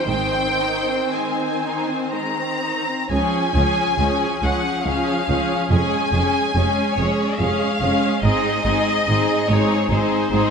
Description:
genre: classical, slow romantic movement for string orchestra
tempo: 57-75 BPM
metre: 3/4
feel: rubato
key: Ab major, Db major from 3.1 s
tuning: A4 = 440 Hz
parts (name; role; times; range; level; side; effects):
- rich studio violin section; melody; 0.0-10.5 s; C5 to Bb5; -23 LUFS; left 3 dB; none
- rich studio violin section; second line; 0.0-10.5 s; Ab3 to C5; -24 LUFS; left 3 dB; none
- rich studio viola section; accompaniment; 0.0-10.5 s; Eb3 to Db4; -23 LUFS; right 2 dB; none
- clear studio cello section; bass; 0.1-10.4 s; Db2 to Ab2; -24 LUFS; right 2 dB; none
- warm studio double bass section; bass; 0.1-10.4 s; F1 to Db2; -26 LUFS; right 2 dB; none
room: wet recital hall reverb, RT60 1.4 s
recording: nothing above 11.0 kHz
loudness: -18 LUFS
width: side -6 dB against mid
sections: 0.0-3.1 A section; 3.1-10.5 B section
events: none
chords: 0.1 Ab; 3.1 Db; 5.7 Db/F; 8.2 Ab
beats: | 0.09 1.13 2.13 | 3.10 3.98 4.85 | 5.71 6.55 7.40 | 8.23 9.07 9.90

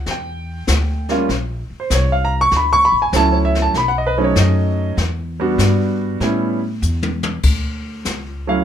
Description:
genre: jazz piano trio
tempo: 98 BPM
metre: 4/4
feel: swing 68% on 8ths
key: D major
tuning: A4 = 440 Hz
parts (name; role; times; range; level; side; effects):
- warm concert grand piano; melody; 0.0-8.6 s; F#3 to Db6; -17 LUFS; right 1 dB; none
- upright bass; bass; 0.0-8.6 s; A1 to A2; -20 LUFS; left 1 dB; none
- jazz brush drum kit; drums; 0.1-8.6 s; brushed snare drum, crash cymbal, hi-hat, kick drum, snare drum, toms; -22 LUFS; left 3 dB; none
room: moderate club reverb, RT60 0.8 s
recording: minimal, uncompressed stereo recording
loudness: -15 LUFS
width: side -9 dB against mid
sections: 0.0-7.4 A section; 7.4-8.6 B section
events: grand piano solo 0.0-7.4; drum fill 6.8-7.4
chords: 0.1 Em7; 1.3 Bbmadd9; 2.5 Dmaj9; 3.8 B7; 5.0 Em7; 6.2 A7; 7.4 Dmaj7(no3)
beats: | 0.07 0.69 1.30 1.91 | 2.53 3.14 3.75 4.37 | 4.98 5.59 6.21 6.82 | 7.44 8.05

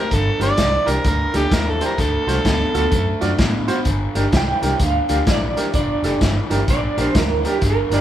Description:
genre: electric blues shuffle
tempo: 128 BPM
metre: 4/4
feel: swing 63% on 8ths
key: G minor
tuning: A4 = 443 Hz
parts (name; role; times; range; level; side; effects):
- overdriven harmonica; melody; 0.0-3.4 s; G4 to D5; -21 LUFS; right 1 dB; none
- bright upright piano; accompaniment; 0.0-8.0 s; D4 to D5; -26 LUFS; right 2 dB; none
- raw garage guitar; riff; 0.0-8.0 s; G2 to B3; -24 LUFS; equal; overdrive
- vintage muted fingered electric bass; bass; 0.1-8.0 s; F1 to A2; -22 LUFS; equal; none
- crunchy breakbeat drum kit; drums; 0.1-8.0 s; hi-hat, kick drum, snare drum; -21 LUFS; equal; none
- electric guitar through a small old amp; second line; 4.4-8.0 s; G4 to G5; -22 LUFS; right 3 dB; tremolo
room: moderate large studio reverb, RT60 1.2 s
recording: band playing live in one room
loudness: -16 LUFS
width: side -11 dB against mid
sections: 0.0-3.9 A section; 3.9-8.0 B section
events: clean electric guitar solo 3.9-8.0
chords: 0.1 Gm; 2.0 D7#9; 3.9 Gm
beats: | 0.11 0.58 1.05 1.52 | 1.99 2.46 2.93 3.40 | 3.87 4.33 4.80 5.27 | 5.74 6.21 6.68 7.15 | 7.62

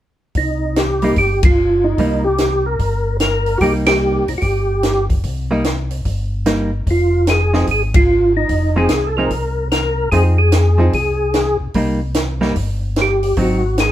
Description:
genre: soul jazz organ trio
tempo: 148 BPM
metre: 4/4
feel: swing 65% on 8ths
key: C minor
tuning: A4 = 439 Hz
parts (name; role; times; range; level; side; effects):
- compact cocktail drum kit; drums; 0.3-13.9 s; hi-hat, kick drum, ride cymbal, snare drum; -19 LUFS; equal; none
- percussive tonewheel organ; melody; 0.4-13.9 s; Eb4 to Bb4; -17 LUFS; equal; slow rotary speaker, chorus vibrato
- mellow tonewheel organ; bass; 0.4-13.9 s; F1 to F2; -19 LUFS; equal; chorus vibrato, slow rotary speaker
- hollow-body jazz guitar; accompaniment; 1.0-13.6 s; F3 to Ab4; -19 LUFS; right 1 dB; none
room: moderate stone room reverb, RT60 0.9 s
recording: band playing live in one room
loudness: -14 LUFS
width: side -12 dB against mid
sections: 0.4-13.9 A section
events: band accent 1.4, 3.8, 7.9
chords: 0.4 Cm7; 6.9 Fm7; 11.7 Cm7; 13.4 Ab7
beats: | 0.36 0.76 1.17 1.58 | 1.98 2.39 2.80 3.20 | 3.61 4.02 4.42 4.83 | 5.24 5.65 6.05 6.46 | 6.87 7.28 7.68 8.09 | 8.50 8.90 9.31 9.72 | 10.12 10.53 10.94 11.34 | 11.75 12.15 12.56 12.97 | 13.37 13.78

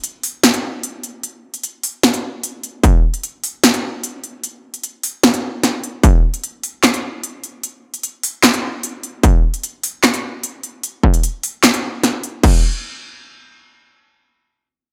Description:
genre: dubstep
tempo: 150 BPM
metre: 4/4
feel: half-time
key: none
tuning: none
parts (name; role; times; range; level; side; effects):
- big-room dance drum kit; drums; 0.0-12.5 s; crash cymbal, handclaps, hi-hat, snare drum; -18 LUFS; equal; none
- electronic kick drum; drums; 2.8-2.9, 6.0-6.1, 9.2-12.5 s; none; -14 LUFS; equal; distortion
room: light reverb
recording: none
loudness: -18 LUFS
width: mono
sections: 0.0-12.4 A section; 12.4-14.0 B section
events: none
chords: none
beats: 0.04 0.43 0.83 | 1.24 1.64 2.04 2.44 | 2.83 3.23 3.63 4.04 | 4.43 4.83 5.24 5.63 | 6.04 6.43 6.83 7.24 | 7.63 8.04 8.44 8.84 | 9.23 9.63 10.04 10.44 | 10.84 11.23 11.63 12.04 | 12.44

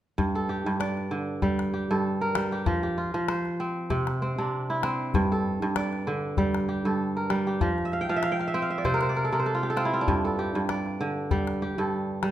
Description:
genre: west african traditional, West African string and xylophone music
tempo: 97 BPM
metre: 4/4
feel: swing 55% on 16ths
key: G dorian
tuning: A4 = 436 Hz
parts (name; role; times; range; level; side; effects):
- kora; arpeggios; 0.2-12.3 s; G2 to G5; -25 LUFS; right 1 dB; none
- calabash; percussion; 0.2-12.3 s; none; -31 LUFS; left 4 dB; none
room: wet recital hall reverb, RT60 1.4 s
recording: minimal, uncompressed stereo recording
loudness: -25 LUFS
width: side -12 dB against mid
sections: 0.2-12.3 A section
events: kora fill 7.8-10.1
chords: 0.2 Gm; 2.7 F5; 3.9 C; 5.1 Gm; 7.6 F5; 8.8 N.C.; 10.1 G5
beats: | 0.18 0.81 1.42 2.04 | 2.66 3.28 3.90 4.52 | 5.14 5.76 6.37 6.99 | 7.61 8.23 8.84 9.46 | 10.08 10.69 11.31 11.92

